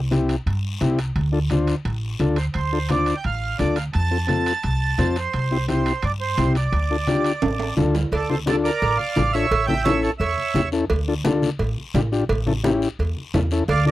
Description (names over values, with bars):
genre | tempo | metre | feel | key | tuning
latin, cumbia | 172 BPM | 4/4 | straight | D minor, D harmonic minor from 8.1 s | A4 = 440 Hz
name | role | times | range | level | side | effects
upright bass | bass | 0.0-13.9 s | A1 to G2 | -23 LUFS | equal | none
overdriven combo organ | accompaniment | 0.1-13.9 s | C4 to C5 | -22 LUFS | left 4 dB | none
congas | percussion | 0.1-13.9 s | none | -26 LUFS | left 1 dB | none
guiro | percussion | 0.1-13.9 s | none | -38 LUFS | left 7 dB | none
timbales and cowbell | percussion | 0.1-13.9 s | none | -29 LUFS | right 4 dB | none
accordion | melody | 2.4-10.7, 13.7-13.9 s | A4 to A5 | -24 LUFS | right 5 dB | none
room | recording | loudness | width
little or no reverb | dry, close 1970s-style studio recording | -19 LUFS | side -15 dB against mid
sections
0.0-8.1 A section; 8.1-13.9 B section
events
drum fill 7.4-8.1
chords
0.0 C; 1.2 Dm; 3.9 F; 5.3 C; 6.7 Dm; 9.5 A7; 10.9 Dm; 12.3 A7